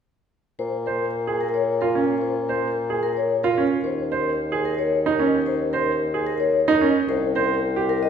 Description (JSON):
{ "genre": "classical, minimalist pattern music", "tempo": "111 BPM", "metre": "3/4", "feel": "straight", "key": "unclear", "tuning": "A4 = 440 Hz", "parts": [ { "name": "vibraphone with medium mallets", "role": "melody", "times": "0.6-8.1 s", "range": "Bb4 to Eb5", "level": "-26 LUFS", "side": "left 5 dB", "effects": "none" }, { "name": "dark bassoon", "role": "bass", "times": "0.6-8.1 s", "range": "C2 to Bb2", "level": "-25 LUFS", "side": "left 2 dB", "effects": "none" }, { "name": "bright baby grand piano", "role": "arpeggios", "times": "0.9-7.9 s", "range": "Db4 to C5", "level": "-23 LUFS", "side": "right 5 dB", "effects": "none" } ], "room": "wet recital hall reverb, RT60 1.8 s", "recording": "heard from further back in the room", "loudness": "-20 LUFS", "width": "side -7 dB against mid", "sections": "0.6-8.1 A section", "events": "none", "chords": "0.6 N.C.; 3.8 Eb5; 7.1 C7(no3)", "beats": "| 0.60 1.14 1.68 | 2.22 2.76 3.30 | 3.84 4.38 4.92 | 5.46 6.00 6.54 | 7.08 7.63" }